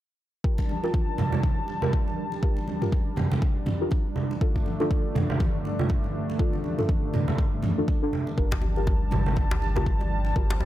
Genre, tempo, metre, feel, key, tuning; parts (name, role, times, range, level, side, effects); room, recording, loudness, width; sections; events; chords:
afro house; 121 BPM; 4/4; swing 59% on 16ths; G minor; A4 = 444 Hz
warm analog pad; sustained chords; 0.4-10.7 s; G2 to A5; -31 LUFS; equal; chorus, tremolo, sidechain pumping
deep mellow chord stab; stabs; 0.4-10.5 s; D4 to Bb4; -32 LUFS; left 1 dB; chorus, sidechain pumping, ping-pong delay
electronic kick drum; drums; 0.4-10.5 s; -25 LUFS; equal
congas; percussion; 0.6-10.7 s; -30 LUFS; right 2 dB
electronic toms; drums; 1.2-9.2 s; -31 LUFS; right 1 dB
warm sub bass; bass; 8.4-10.7 s; G1; -27 LUFS; equal; sidechain pumping
djembe; percussion; 8.5-10.7 s; -32 LUFS; left 2 dB
light reverb, digital ambience; -23 LUFS; side -14 dB against mid
0.4-10.7 A section
0.4 Gm7; 4.4 Dm/G; 8.4 Gm7